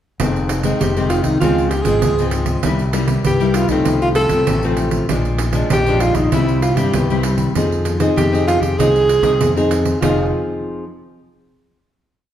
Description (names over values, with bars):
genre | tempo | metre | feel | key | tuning
samba and choro | 98 BPM | 4/4 | straight | F minor | A4 = 439 Hz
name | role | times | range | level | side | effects
nylon-string guitar | accompaniment | 0.2-10.8 s | F2 to Ab4 | -19 LUFS | left 2 dB | none
growling fingered electric bass | bass | 0.2-10.3 s | F1 to G2 | -20 LUFS | equal | overdrive
pandeiro | percussion | 0.2-10.2 s | none | -22 LUFS | right 3 dB | none
breathy alto saxophone | melody | 0.8-10.3 s | Eb4 to A4 | -18 LUFS | right 2 dB | none
room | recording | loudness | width
wet large studio reverb, RT60 1.4 s | heard from further back in the room | -14 LUFS | side -10 dB against mid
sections
0.2-10.0 A section; 10.0-12.3 final chord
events
none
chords
0.2 Fm7; 1.4 Dbmaj7; 2.6 C7; 3.9 F/C; 5.1 Bb7; 6.3 C; 7.6 Fm7